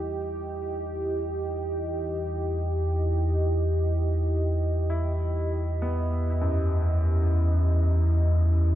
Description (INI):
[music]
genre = dark ambient drone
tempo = free time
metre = none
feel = none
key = E harmonic minor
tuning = A4 = 440 Hz
[part]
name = deep dark ambient pad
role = sustained chords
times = 0.0-8.8 s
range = E4 to D#5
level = -30 LUFS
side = right 2 dB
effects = chorus, built-in reverb
[part]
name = warm grand piano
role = arpeggios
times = 0.0-8.8 s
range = F#2 to E4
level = -34 LUFS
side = left 1 dB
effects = tape echo
[part]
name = deep rumbling drone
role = drone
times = 0.0-8.8 s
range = E2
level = -24 LUFS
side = equal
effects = built-in reverb, lush chorus
[part]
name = quartz singing bowl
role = texture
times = 0.0-8.8 s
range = E4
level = -49 LUFS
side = left 3 dB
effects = none
[sound]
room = light reverb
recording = none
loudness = -24 LUFS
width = side -13 dB against mid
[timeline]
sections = 0.0-8.8 A section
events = filter sweep on synth drone 0.0-8.8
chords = 0.0 Em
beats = free time